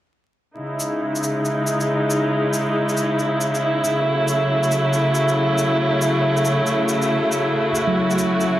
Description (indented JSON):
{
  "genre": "future garage",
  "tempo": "138 BPM",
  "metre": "4/4",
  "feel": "swing 63% on 16ths",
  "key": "C# minor",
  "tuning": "A4 = 440 Hz",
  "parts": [
    { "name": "rich chamber string section", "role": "sustained chords", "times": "0.6-8.6 s", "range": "C#3 to F#4", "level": "-18 LUFS", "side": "equal", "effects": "low-pass filter" },
    { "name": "shaker", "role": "drums", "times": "0.8-8.5 s", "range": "none", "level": "-30 LUFS", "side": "equal", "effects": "overdrive" },
    { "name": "mellow tine electric piano", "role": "accompaniment", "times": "7.9-8.6 s", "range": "F#3", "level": "-22 LUFS", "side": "equal", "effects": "medium stereo tremolo" }
  ],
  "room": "light reverb",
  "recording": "dry, gritty hardware recording, vinyl crackle",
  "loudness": "-17 LUFS",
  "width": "side -13 dB against mid",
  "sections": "0.6-8.6 A section",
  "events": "filter sweep on string section 0.6-8.6",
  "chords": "0.6 C#madd9; 4.1 F#m7/C#",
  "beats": "| 0.58 1.01 1.45 1.89 | 2.32 2.75 3.19 3.62 | 4.06 4.49 4.93 5.36 | 5.80 6.23 6.67 7.10 | 7.54 7.97 8.41"
}